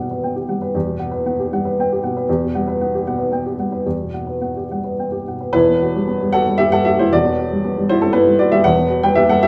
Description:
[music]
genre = neoclassical minimalist piano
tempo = 105-123 BPM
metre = 3/4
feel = rubato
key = E minor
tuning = A4 = 444 Hz
[part]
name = dark upright piano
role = solo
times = 0.0-9.5 s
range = E1 to G5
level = -18 LUFS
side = equal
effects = none
[sound]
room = moderate stone room reverb, RT60 1.0 s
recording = band playing live in one room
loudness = -18 LUFS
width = mono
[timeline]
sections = 0.0-5.5 A section; 5.5-9.5 B section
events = none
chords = 0.0 Emadd9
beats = 0.22 | 0.75 1.26 1.77 | 2.27 2.77 3.30 | 3.85 4.41 4.97 | 5.53 6.07 6.58 | 7.10 7.63 8.14 | 8.64 9.15

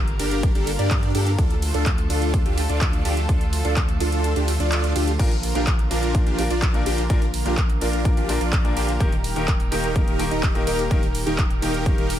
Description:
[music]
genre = EDM, festival progressive house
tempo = 126 BPM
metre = 4/4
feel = straight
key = unclear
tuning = A4 = 440 Hz
[part]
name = lush unison pad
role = sustained chords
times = 0.0-12.2 s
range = D3 to Bb4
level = -30 LUFS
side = right 1 dB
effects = chorus, vintage 12-bit sampler grit, sidechain pumping
[part]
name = saturated sub bass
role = bass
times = 0.0-12.2 s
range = Eb1 to G2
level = -25 LUFS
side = equal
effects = sidechain pumping
[part]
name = big-room dance drum kit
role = drums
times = 0.1-12.2 s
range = crash cymbal, handclaps, hi-hat, ride cymbal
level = -30 LUFS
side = right 1 dB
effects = overdrive
[part]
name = supersaw chords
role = riff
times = 0.2-12.1 s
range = D4 to Eb5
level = -26 LUFS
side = right 1 dB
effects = phaser, sidechain pumping, ping-pong delay
[part]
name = electronic kick drum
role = drums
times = 0.4-12.0 s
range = none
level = -21 LUFS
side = equal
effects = overdrive
[part]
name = clear baby grand piano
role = accompaniment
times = 5.2-12.1 s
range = Bb2 to Bb4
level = -28 LUFS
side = left 3 dB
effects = sidechain pumping, ping-pong delay
[sound]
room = digital ambience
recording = none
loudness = -19 LUFS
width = side -11 dB against mid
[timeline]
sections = 0.0-12.2 A section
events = kick drops out 4.2-5.2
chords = 0.0 Gm; 1.4 Dm; 5.2 Bb; 9.0 Eb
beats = 0.43 0.91 | 1.39 1.86 2.34 2.81 | 3.29 3.77 4.24 4.72 | 5.20 5.67 6.15 6.62 | 7.10 7.58 8.05 8.53 | 9.00 9.48 9.96 10.43 | 10.91 11.38 11.86

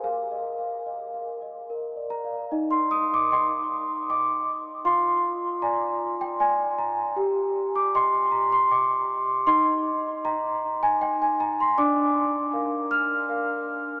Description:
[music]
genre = classical, lullaby for celesta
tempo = 78 BPM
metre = 3/4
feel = straight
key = Eb major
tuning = A4 = 440 Hz
[part]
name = large celesta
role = solo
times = 0.0-14.0 s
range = D4 to F6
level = -22 LUFS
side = equal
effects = analog delay
[sound]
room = wet huge ambient reverb, RT60 7.4 s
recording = dreamy mix soaked in reverb, small speaker sound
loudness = -22 LUFS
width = side -29 dB against mid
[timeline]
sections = 0.0-2.5 A section; 2.5-14.0 B section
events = none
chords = 0.0 Bbsus4; 1.7 Bb; 2.5 Eb; 4.9 Fm69; 7.2 Eb/G; 9.5 Eb; 11.8 Bb/D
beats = | 0.05 0.87 1.69 | 2.50 3.29 4.08 | 4.85 5.63 6.40 | 7.17 7.94 8.71 | 9.47 10.24 11.01 | 11.78 12.54 13.30

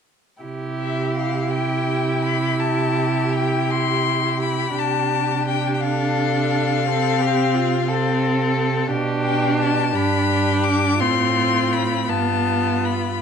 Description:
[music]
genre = classical, slow romantic movement for string quartet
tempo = 51-59 BPM (dotted quarters)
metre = 12/8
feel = rubato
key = C major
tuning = A4 = 440 Hz
[part]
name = warm violin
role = second line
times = 0.4-13.2 s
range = F4 to A4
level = -26 LUFS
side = left 2 dB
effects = none
[part]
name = rich viola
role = accompaniment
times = 0.4-13.2 s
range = B3 to E4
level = -23 LUFS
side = equal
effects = none
[part]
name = warm cello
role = bass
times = 0.4-13.2 s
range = G2 to C3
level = -24 LUFS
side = right 6 dB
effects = none
[part]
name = rich violin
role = melody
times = 0.8-13.2 s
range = E5 to D6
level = -24 LUFS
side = left 10 dB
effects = none
[sound]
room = light reverb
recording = close, detailed microphones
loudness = -18 LUFS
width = side -7 dB against mid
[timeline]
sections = 0.4-13.2 A section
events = none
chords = 0.4 C; 4.8 Dm7/C; 8.9 G/B; 11.0 F/A; 12.1 G7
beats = | 0.42 1.52 2.59 3.72 | 4.78 5.83 6.87 7.89 | 8.92 9.94 11.01 12.09

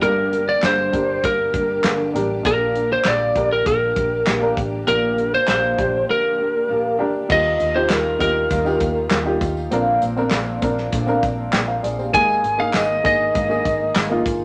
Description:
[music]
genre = piano-driven pop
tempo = 99 BPM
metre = 4/4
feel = straight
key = Eb major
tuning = A4 = 440 Hz
[part]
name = lightly driven lead guitar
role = melody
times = 0.0-14.2 s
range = Bb4 to Ab5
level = -21 LUFS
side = equal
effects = none
[part]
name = warm upright piano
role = accompaniment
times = 0.0-14.4 s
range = G2 to G5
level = -27 LUFS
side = equal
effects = none
[part]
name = warm studio string section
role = sustained chords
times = 0.0-14.4 s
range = C3 to Ab4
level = -39 LUFS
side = equal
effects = none
[part]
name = fingerpicked steel-string acoustic guitar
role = riff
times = 0.0-14.4 s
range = G2 to Ab4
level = -29 LUFS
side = equal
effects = none
[part]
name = vintage muted picked electric bass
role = bass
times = 0.0-14.4 s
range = G1 to Eb2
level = -32 LUFS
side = equal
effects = none
[part]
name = modern studio drum kit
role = drums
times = 0.0-14.4 s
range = crash cymbal, handclaps, hi-hat, kick drum, snare drum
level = -25 LUFS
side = equal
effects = none
[part]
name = tambourine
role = percussion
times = 7.3-14.4 s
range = none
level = -49 LUFS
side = equal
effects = none
[sound]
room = moderate studio reverb, RT60 0.6 s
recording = none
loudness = -19 LUFS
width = mono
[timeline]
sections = 0.0-7.3 A section; 7.3-14.4 B section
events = break 6.1-7.3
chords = 0.0 Gm; 2.5 Bb6; 7.3 Ebadd9; 9.7 Bbadd9; 12.1 Absus2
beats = | 0.03 0.64 1.24 1.85 | 2.45 3.06 3.67 4.27 | 4.88 5.48 6.09 6.69 | 7.30 7.90 8.51 9.11 | 9.72 10.32 10.93 11.54 | 12.14 12.74 13.35 13.96

